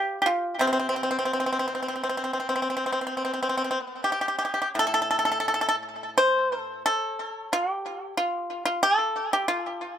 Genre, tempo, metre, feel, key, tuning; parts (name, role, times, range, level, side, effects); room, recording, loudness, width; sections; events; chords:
chinese traditional, Chinese solo plucked strings; 78-93 BPM; 4/4; rubato; A4 = 440 Hz
pipa; solo; 0.0-9.9 s; A2 to C5; -24 LUFS; equal; tape echo
light reverb; -24 LUFS; side -9 dB against mid
0.0-4.8 A section; 4.8-10.0 B section